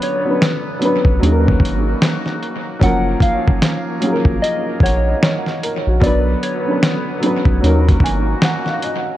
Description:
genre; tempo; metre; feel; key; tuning
lo-fi hip hop; 75 BPM; 4/4; swing 61% on 16ths; F# major; A4 = 440 Hz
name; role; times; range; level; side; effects
soft struck synth lead; melody; 0.0-7.0 s; C#5 to F#5; -24 LUFS; left 1 dB; chorus, low-pass filter, dub echo
dark upright piano; accompaniment; 0.0-9.2 s; E#3 to G#5; -19 LUFS; equal; cassette tape, low-pass filter, dub echo
clear woodwind section; sustained chords; 0.0-9.2 s; D3 to A#4; -29 LUFS; left 1 dB; low-pass filter
dusty soul sampler-style drum kit; drums; 0.0-9.0 s; hi-hat, kick drum, snare drum; -17 LUFS; equal; overdrive, dub echo
round analog bass; bass; 1.1-8.3 s; F#1 to D#2; -17 LUFS; equal; none
room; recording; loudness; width
light reverb, digital ambience; echo-heavy mix, cassette tape; -14 LUFS; side -14 dB against mid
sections
0.0-9.2 A section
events
none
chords
0.0 Bmadd9; 1.2 D#m7; 2.8 F#maj7; 6.0 Bmadd9; 7.6 D#m7

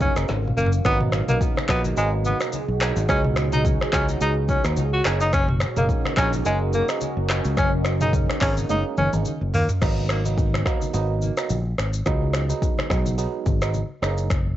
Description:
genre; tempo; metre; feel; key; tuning
afrobeats; 107 BPM; 4/4; swing 55% on 16ths; F# major; A4 = 440 Hz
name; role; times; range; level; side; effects
breathy tenor saxophone; melody; 0.0-9.7 s; G#3 to F#4; -26 LUFS; equal; tape echo
barking FM electric piano; accompaniment; 0.0-14.3 s; F#3 to D#4; -29 LUFS; right 8 dB; chorus, cassette tape
deep dark ambient pad; sustained chords; 0.0-9.8 s; B2 to E#5; -32 LUFS; right 1 dB; chorus, built-in reverb, cassette tape
fingered electric bass; bass; 0.0-14.6 s; F#1 to D#2; -24 LUFS; left 1 dB; none
afro-pop drum kit; drums; 0.0-14.5 s; crash cymbal, finger snaps, handclaps, hi-hat, kick drum, rim click, shaker, snare drum, toms; -24 LUFS; equal; overdrive, cassette tape
congas; percussion; 0.0-14.6 s; none; -36 LUFS; left 8 dB; none
room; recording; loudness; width
light reverb; home recording on cassette, nothing above 7.9 kHz; -20 LUFS; side -13 dB against mid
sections
0.0-9.8 A section; 9.8-14.6 B section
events
drum fill 0.3-0.8, 8.7-9.8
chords
0.0 F#6; 0.8 G#m7; 3.1 C#7sus4; 5.1 F#6; 9.8 G#m7; 12.1 C#7sus4; 14.0 F#6

